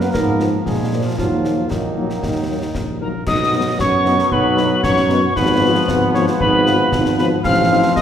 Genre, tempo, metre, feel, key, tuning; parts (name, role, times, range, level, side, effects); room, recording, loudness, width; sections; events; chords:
military-style march for wind band; 115 BPM; 2/4; straight; A4 = 440 Hz
mellow cornet; melody; 0.0-8.0 s; Eb4 to F5; -22 LUFS; left 1 dB
clear euphonium; second line; 0.0-3.0 s; Eb3 to Cb4; -25 LUFS; right 1 dB
bright trombone section; sustained chords; 0.0-8.0 s; F3 to C4; -22 LUFS; left 1 dB
mellow tuba; bass; 0.0-8.0 s; Ab1 to Bb2; -19 LUFS; right 2 dB
concert snare drum, concert bass drum and clash cymbals; drums; 0.0-8.0 s; -25 LUFS; left 1 dB
dark French horn section; accompaniment; 0.4-7.8 s; F3 to F4; -25 LUFS; left 4 dB
piccolo; second line; 3.0-8.0 s; Bb5 to F6; -20 LUFS; left 1 dB
wet concert hall reverb, RT60 2.2 s; recorded in a church or concert hall; -14 LUFS; side -9 dB against mid
0.0-3.3 A section; 3.3-8.0 B section
0.1 Fdim/Ab; 0.7 Bb7; 1.2 Ebm; 3.3 B; 5.4 Fdim/Ab; 7.4 F7/A